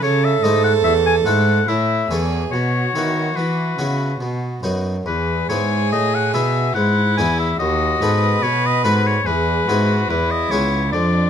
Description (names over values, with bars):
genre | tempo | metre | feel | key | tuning
classical, baroque-style sonata movement with continuo | 72 BPM | 3/4 | rubato | E major | A4 = 440 Hz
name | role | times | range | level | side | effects
clear oboe | melody | 0.0-11.3 s | B4 to G#5 | -21 LUFS | left 6 dB | none
rich violin | second line | 0.0-11.3 s | D4 to B4 | -22 LUFS | right 6 dB | none
harpsichord | accompaniment | 0.0-11.3 s | C#2 to A4 | -23 LUFS | left 2 dB | none
rich cello | bass | 0.0-11.3 s | C#2 to E3 | -21 LUFS | right 1 dB | none
room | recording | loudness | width
light reverb | close, detailed microphones | -16 LUFS | side -8 dB against mid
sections
0.0-11.3 A section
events
none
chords
0.0 A; 2.5 Bsus4; 4.2 B; 5.1 E; 7.6 B7/D#; 9.3 E; 10.1 C#m7/E